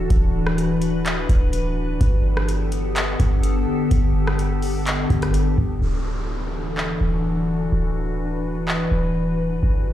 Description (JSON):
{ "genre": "hip hop, atmospheric cloud-rap", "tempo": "126 BPM", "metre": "4/4", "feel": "half-time", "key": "D major", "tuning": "A4 = 441 Hz", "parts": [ { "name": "glassy FM pad", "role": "sustained chords", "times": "0.0-9.9 s", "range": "D3 to B4", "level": "-24 LUFS", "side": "left 2 dB", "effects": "ensemble chorus, built-in reverb, sidechain pumping, low-pass filter" }, { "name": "clean 808-style bass", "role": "bass", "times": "0.0-9.9 s", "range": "D1 to G1", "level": "-22 LUFS", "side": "equal", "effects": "none" }, { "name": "booming analog drum machine", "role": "drums", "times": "0.1-8.8 s", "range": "handclaps, hi-hat, kick drum, rim click", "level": "-22 LUFS", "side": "equal", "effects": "none" }, { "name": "downlifter", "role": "sound effects", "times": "5.8-9.6 s", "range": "none", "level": "-37 LUFS", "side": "right 1 dB", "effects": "none" } ], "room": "little or no reverb", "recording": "played on a big sound system in a bare room, large studio reverb", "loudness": "-19 LUFS", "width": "side -12 dB against mid", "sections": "0.0-5.8 A section; 5.8-9.9 B section", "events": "filter sweep on ambient pad 5.8-9.9", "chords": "0.0 Dadd9; 2.0 Gadd9; 5.8 Dadd9" }